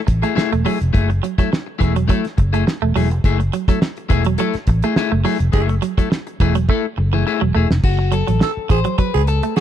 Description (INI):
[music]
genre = funk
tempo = 104 BPM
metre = 4/4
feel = straight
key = F# minor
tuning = A4 = 440 Hz
[part]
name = electric guitar at the edge of break-up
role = accompaniment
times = 0.1-9.6 s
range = A3 to B#4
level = -22 LUFS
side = left 9 dB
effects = none
[part]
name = clean electric guitar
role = riff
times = 0.1-9.6 s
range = E3 to A3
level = -24 LUFS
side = right 11 dB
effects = none
[part]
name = vintage muted fingered electric bass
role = bass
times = 0.1-9.4 s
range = E1 to C#2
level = -18 LUFS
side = equal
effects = none
[part]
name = damped 70s drum kit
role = drums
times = 0.1-9.6 s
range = crash cymbal, hi-hat, kick drum, snare drum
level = -18 LUFS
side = equal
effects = none
[part]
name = growling tenor saxophone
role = second line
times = 5.5-9.6 s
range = G#4 to A4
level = -24 LUFS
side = right 7 dB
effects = none
[sound]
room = little or no reverb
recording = dark, warm production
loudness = -15 LUFS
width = side -10 dB against mid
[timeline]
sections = 0.0-7.8 A section; 7.8-9.6 B section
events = band accent 5.5-7.8; drum fill 6.7-7.8; clean electric guitar solo 7.8-9.6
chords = 0.0 F#m9; 7.8 F#m